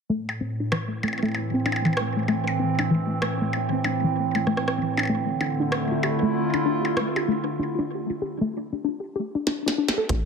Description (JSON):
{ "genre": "IDM", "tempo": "96 BPM", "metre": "4/4", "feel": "swing 62% on 16ths", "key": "A minor", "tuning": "A4 = 440 Hz", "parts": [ { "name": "warbly tape-like pad", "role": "sustained chords", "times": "0.3-10.3 s", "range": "A2 to F4", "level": "-26 LUFS", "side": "right 2 dB", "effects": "chorus, built-in reverb, vintage 12-bit sampler grit" }, { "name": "warbly dusty pluck", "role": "arpeggios", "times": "0.1-10.3 s", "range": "E3 to A4", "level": "-26 LUFS", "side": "left 2 dB", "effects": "chorus, tape echo" }, { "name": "glitchy drum kit", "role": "drums", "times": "0.3-10.2 s", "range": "hi-hat, percussion blips, rim click, snare drum", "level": "-28 LUFS", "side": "equal", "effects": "small room ambience, tape echo" }, { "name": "rubbery square bass", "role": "bass", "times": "10.1-10.3 s", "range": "A1", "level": "-24 LUFS", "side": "equal", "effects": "tube saturation" }, { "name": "electronic kick drum", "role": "drums", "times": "10.1-10.2 s", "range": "none", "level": "-27 LUFS", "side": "right 1 dB", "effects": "small room ambience" } ], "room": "moderate spring reverb, RT60 2.3 s", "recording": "echo-heavy mix", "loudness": "-22 LUFS", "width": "side -5 dB against mid", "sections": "0.1-10.1 A section", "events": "break 7.6-10.1; drum fill 9.5-10.1", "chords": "0.1 Am; 5.1 Dm9" }